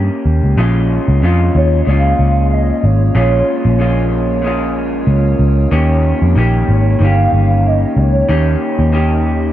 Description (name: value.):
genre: indie pop, bedroom pop.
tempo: 94 BPM.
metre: 4/4.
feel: swing 55% on 16ths.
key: Bb dorian.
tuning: A4 = 440 Hz.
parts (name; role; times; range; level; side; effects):
electric guitar through a small old amp; accompaniment; 0.0-9.5 s; Bb2 to G4; -18 LUFS; left 2 dB; lush chorus, warbly pitch drift.
vintage muted picked electric bass; bass; 0.0-9.5 s; G1 to F2; -12 LUFS; equal; none.
warbly tape-like pad; sustained chords; 1.5-9.5 s; Eb3 to Eb5; -25 LUFS; right 5 dB; chorus, built-in reverb.
hollow clarinet-like synth lead; melody; 1.6-9.3 s; Db5 to F5; -19 LUFS; right 1 dB; ensemble chorus, tape echo.
room: light reverb.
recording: dark, warm production.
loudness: -11 LUFS.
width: side -12 dB against mid.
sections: 0.6-9.5 A section.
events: none.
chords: 0.0 Eb7; 0.6 Bbm7; 5.7 Eb7.